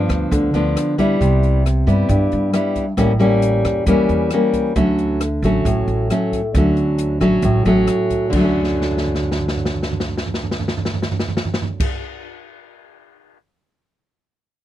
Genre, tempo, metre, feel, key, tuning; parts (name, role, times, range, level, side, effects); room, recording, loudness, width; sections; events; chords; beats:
bossa nova; 135 BPM; 4/4; straight; D major; A4 = 440 Hz
nylon-string guitar; accompaniment; 0.0-11.9 s; G2 to E4; -17 LUFS; equal
upright bass; bass; 0.0-11.8 s; A1 to G2; -21 LUFS; right 1 dB
open jazz drum kit; drums; 0.1-13.4 s; crash cymbal, hi-hat, kick drum, rim click, snare drum, toms; -23 LUFS; right 1 dB
little or no reverb; dry, close 1970s-style studio recording; -15 LUFS; side -12 dB against mid
0.0-8.3 A section; 8.3-11.9 B section
drum fill 8.6-11.8
0.0 G7; 1.2 Cmaj7; 3.0 A7b9; 4.8 Dmaj7
0.32 0.76 | 1.21 1.66 2.10 2.54 | 2.99 3.44 3.88 4.33 | 4.77 5.22 5.66 6.11 | 6.55 7.00 7.45 7.89 | 8.34 8.78 9.23 9.68 | 10.12 10.57 11.02 11.46